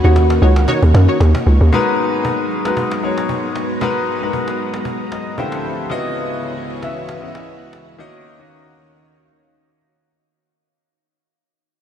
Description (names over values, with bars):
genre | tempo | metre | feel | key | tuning
amapiano | 115 BPM | 4/4 | swing 55% on 16ths | G# minor | A4 = 439 Hz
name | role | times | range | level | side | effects
soft struck synth lead | melody | 0.0-1.2 s | F#4 | -23 LUFS | equal | chorus, phaser, ping-pong delay
string machine, violins | sustained chords | 0.0-10.1 s | C#2 to A#5 | -24 LUFS | equal | ensemble chorus
punchy chord stab | stabs | 0.0-1.2 s | D#4 to C#5 | -24 LUFS | equal | chorus, ping-pong delay
hollow log drum bass | bass | 0.0-1.7 s | C#2 to F#2 | -10 LUFS | equal | none
cajon | drums | 0.0-10.0 s | none | -28 LUFS | equal | none
clear concert grand piano | accompaniment | 1.7-10.1 s | C#3 to B5 | -20 LUFS | left 3 dB | analog chorus
room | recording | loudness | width
moderate huge ambient reverb, RT60 6.5 s | dreamy mix soaked in reverb | -14 LUFS | side -9 dB against mid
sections
0.0-1.7 A section; 1.7-10.1 B section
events
drop 0.0-1.7; fade-out 1.7-10.1; grand piano fill 4.9-5.9; break 8.0-10.1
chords
0.0 D#m7; 1.7 G#m9; 5.4 Dm11; 5.9 C#m11; 8.0 D#m7